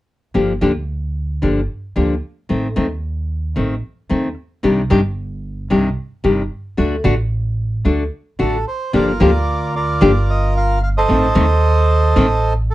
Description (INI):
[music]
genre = tango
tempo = 112 BPM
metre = 4/4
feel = rubato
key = G minor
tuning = A4 = 440 Hz
[part]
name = nylon-string guitar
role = accompaniment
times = 0.3-12.3 s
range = C3 to G4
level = -16 LUFS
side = left 2 dB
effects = none
[part]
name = upright bass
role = bass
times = 0.4-12.7 s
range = G1 to Eb2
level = -18 LUFS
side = right 1 dB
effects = none
[part]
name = bandoneon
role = melody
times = 8.4-12.7 s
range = F4 to F5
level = -18 LUFS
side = right 2 dB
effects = none
[sound]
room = light reverb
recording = dark, warm production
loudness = -15 LUFS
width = side -16 dB against mid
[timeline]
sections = 0.3-8.9 A section; 8.9-12.7 B section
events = none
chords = 0.3 Gm7; 2.5 Adim; 4.6 Cmadd9; 6.8 D; 8.9 Gm7; 11.1 Adim